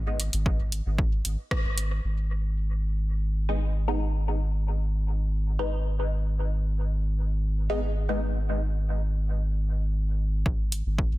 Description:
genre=dub techno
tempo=114 BPM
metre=4/4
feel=straight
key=G# minor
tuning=A4 = 440 Hz
part: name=soft dub sub bass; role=bass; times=0.0-11.2 s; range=G#1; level=-26 LUFS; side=equal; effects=sidechain pumping
part: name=punchy analog drum machine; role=drums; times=0.2-1.9, 10.7-10.8 s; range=hi-hat, rim click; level=-32 LUFS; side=equal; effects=low-pass filter on hats, soft clipping on snare, low-pass filter on snare, dub echo
part: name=electronic kick drum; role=drums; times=0.5-1.6, 10.5-11.1 s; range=none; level=-26 LUFS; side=equal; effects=none
part: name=filtered dub chord stab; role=stabs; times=3.5-8.2 s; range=G#3 to D#4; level=-33 LUFS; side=left 1 dB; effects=phaser, sidechain pumping, dub echo
room=little or no reverb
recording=dense, heavily limited modern master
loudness=-25 LUFS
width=side -18 dB against mid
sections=0.0-2.0 A section; 2.0-10.5 B section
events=band accent 1.5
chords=none

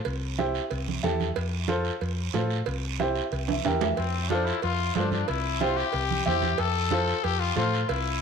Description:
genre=latin, cumbia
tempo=184 BPM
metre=4/4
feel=straight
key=F major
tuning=A4 = 443 Hz
part: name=hollow-body short-scale fingered electric bass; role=bass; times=0.1-8.2 s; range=C2 to A2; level=-30 LUFS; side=equal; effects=none
part: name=congas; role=percussion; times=0.1-8.1 s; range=none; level=-34 LUFS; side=right 8 dB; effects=none
part: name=cowbell and timbales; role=percussion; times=0.1-8.1 s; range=none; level=-34 LUFS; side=right 9 dB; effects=none
part: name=guiro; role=percussion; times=0.1-8.2 s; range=none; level=-37 LUFS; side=right 11 dB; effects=none
part: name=warm upright piano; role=accompaniment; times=0.4-7.8 s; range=E4 to G5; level=-30 LUFS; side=right 1 dB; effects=none
part: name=growling trumpet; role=second line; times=4.0-8.2 s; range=C4 to A4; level=-28 LUFS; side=left 9 dB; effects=none
room=moderate echo chamber reverb, RT60 1.8 s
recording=1960s-style stereo with parts hard left and right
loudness=-24 LUFS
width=side -6 dB against mid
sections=0.0-8.2 A section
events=upright piano fill 3.3-4.0; drum fill 3.5-4.0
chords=0.1 C; 1.4 F; 2.7 C7; 4.0 F; 5.3 C; 6.6 F

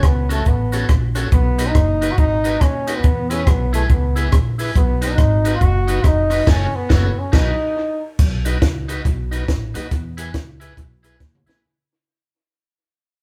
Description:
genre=ska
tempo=140 BPM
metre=4/4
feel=swing 62% on 8ths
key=B mixolydian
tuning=A4 = 440 Hz
part: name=bright trombone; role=melody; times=0.0-8.0 s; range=A3 to F#4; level=-24 LUFS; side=equal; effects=none
part: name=upright bass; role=bass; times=0.0-11.6 s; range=E#1 to E2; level=-23 LUFS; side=equal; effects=tube saturation
part: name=compact cocktail drum kit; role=drums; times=0.0-11.6 s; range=crash cymbal, hi-hat, kick drum, rim click, snare drum, toms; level=-20 LUFS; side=equal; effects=none
part: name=cabasa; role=percussion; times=0.0-11.5 s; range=none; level=-44 LUFS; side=equal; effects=none
part: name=electric guitar at the edge of break-up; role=accompaniment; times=0.3-11.6 s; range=D#4 to C#5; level=-32 LUFS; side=equal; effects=none
part: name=percussive tonewheel organ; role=stabs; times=0.3-11.6 s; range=C#4 to B4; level=-33 LUFS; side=equal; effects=overdrive, chorus vibrato, slow rotary speaker
room=moderate large studio reverb, RT60 0.9 s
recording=band playing live in one room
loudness=-18 LUFS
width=mono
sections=0.0-8.2 A section; 8.2-11.6 B section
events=band accent 6.5-8.2; fade-out 8.2-11.6; drum fill 11.2-11.6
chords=0.0 F#m; 1.3 B; 3.0 E; 4.8 B; 6.5 F#m; 7.3 B; 9.9 E

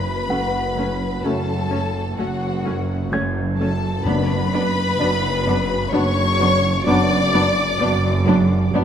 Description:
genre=cinematic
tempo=64 BPM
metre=3/4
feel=straight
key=unclear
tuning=A4 = 440 Hz
part: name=warm studio violin section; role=melody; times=0.0-8.7 s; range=F#5 to D6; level=-26 LUFS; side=left 4 dB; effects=none
part: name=warm studio violin section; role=second line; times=0.0-8.7 s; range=F#4 to D5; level=-24 LUFS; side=left 2 dB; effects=none
part: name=rich studio cello section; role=riff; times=0.0-8.8 s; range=F#2 to F#3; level=-27 LUFS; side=right 2 dB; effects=none
part: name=rich studio double bass section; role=bass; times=0.0-8.8 s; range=F#1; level=-26 LUFS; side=right 3 dB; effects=none
part: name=warm studio cello section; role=bass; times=0.0-8.8 s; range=F#2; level=-24 LUFS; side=right 2 dB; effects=none
part: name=bowed-like drone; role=drone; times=0.0-8.8 s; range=F#1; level=-28 LUFS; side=left 1 dB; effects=built-in reverb
part: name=impact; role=sound effects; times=0.0-1.2 s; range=none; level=barely audible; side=none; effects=none
part: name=rich studio viola section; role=accompaniment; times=0.3-8.8 s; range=A3 to D4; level=-26 LUFS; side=equal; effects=none
part: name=dark grand piano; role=texture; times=0.3-8.8 s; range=F#5 to G#6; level=-30 LUFS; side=equal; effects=none
part: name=dark trombone section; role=sustained chords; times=1.2-7.2 s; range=F#2 to F#3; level=-29 LUFS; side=right 1 dB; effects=none
part: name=warm French horn section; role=sustained chords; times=1.2-7.2 s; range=A3 to D4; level=-27 LUFS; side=left 4 dB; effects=none
part: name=timpani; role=percussion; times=4.1-5.4 s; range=F#2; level=-28 LUFS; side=left 2 dB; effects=none
room=wet scoring stage reverb, RT60 1.8 s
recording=none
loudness=-17 LUFS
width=side -8 dB against mid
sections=0.0-8.8 A section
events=impact 0.0-1.2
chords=0.0 F#m; 4.1 Bm/F#

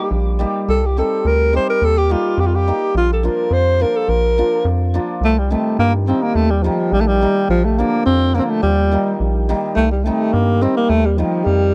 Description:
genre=balkan folk, Balkan wedding band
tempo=106 BPM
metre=2/4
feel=swing 54% on 16ths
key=unclear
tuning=A4 = 443 Hz
part: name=breathy alto saxophone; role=melody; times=0.0-11.7 s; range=F3 to C5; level=-19 LUFS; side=equal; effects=tape echo
part: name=hammered dulcimer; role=accompaniment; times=0.0-11.7 s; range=D3 to G4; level=-25 LUFS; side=equal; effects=none
part: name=rubbery square bass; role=bass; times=0.1-11.7 s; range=Bb1 to G2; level=-20 LUFS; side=equal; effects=none
room=light reverb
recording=dry, close 1970s-style studio recording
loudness=-17 LUFS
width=mono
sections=0.0-5.2 A section; 5.2-11.7 A section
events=none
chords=0.0 Eb; 0.7 Cm; 1.8 Eb; 3.0 Bb; 5.2 Cm; 6.4 Eb; 7.5 Bb; 8.6 Eb; 9.8 Cm; 10.9 Eb

